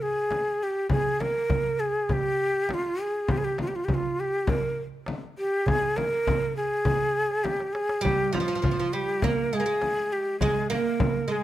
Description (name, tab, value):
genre	Arabic maqam ensemble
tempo	101 BPM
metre	4/4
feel	straight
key	unclear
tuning	A4 = 440 Hz
part	breathy ney	melody	0.0-11.4 s	F4 to Bb4	-26 LUFS	equal	none
part	darbuka	percussion	0.3-11.1 s	none	-31 LUFS	right 4 dB	none
part	frame drum	percussion	0.3-11.1 s	none	-30 LUFS	left 2 dB	none
part	oud	second line	8.0-11.4 s	F3 to Bb3	-30 LUFS	right 5 dB	none
room	little or no reverb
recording	close, detailed microphones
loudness	-24 LUFS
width	side -13 dB against mid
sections	0.0-11.4 A section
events	drum fill 7.4-8.0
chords	none